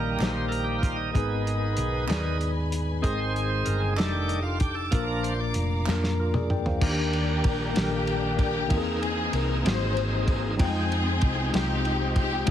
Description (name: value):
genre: slow gospel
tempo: 64 BPM (dotted quarters)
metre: 6/8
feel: straight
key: Eb major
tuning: A4 = 440 Hz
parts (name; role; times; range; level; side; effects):
- mellow tine electric piano; accompaniment; 0.0-12.5 s; Ab2 to G5; -30 LUFS; left 2 dB; medium stereo tremolo
- bright tonewheel organ; sustained chords; 0.0-12.5 s; Eb3 to G5; -32 LUFS; right 3 dB; fast rotary speaker, overdrive
- warm studio string section; sustained chords; 0.0-6.8 s; Bb4 to D6; -39 LUFS; left 1 dB; none
- hollow-body short-scale fingered electric bass; bass; 0.0-12.5 s; F1 to F2; -29 LUFS; equal; none
- warm soul drum kit; drums; 0.2-12.5 s; crash cymbal, hi-hat, kick drum, ride cymbal, snare drum, toms; -28 LUFS; equal; none
- group handclap; percussion; 0.2-6.2 s; none; -38 LUFS; right 4 dB; none
- warm studio string section; melody; 6.8-12.5 s; Bb3 to C5; -29 LUFS; left 4 dB; none
room: light reverb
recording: heavily compressed radio sound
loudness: -23 LUFS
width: side -10 dB against mid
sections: 0.0-6.8 A section; 6.8-12.5 B section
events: tonewheel organ solo 0.0-6.8; drum fill 5.9-6.8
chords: 0.0 Eb; 1.1 Abm; 3.0 Ab; 4.0 F13; 4.9 Bb; 6.8 Ebmaj7; 8.7 C7alt; 10.6 Fm9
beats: 0.20 | 1.15 2.09 | 3.04 3.98 | 4.93 5.87 | 6.82 7.76 | 8.71 9.65 | 10.59 11.54 | 12.48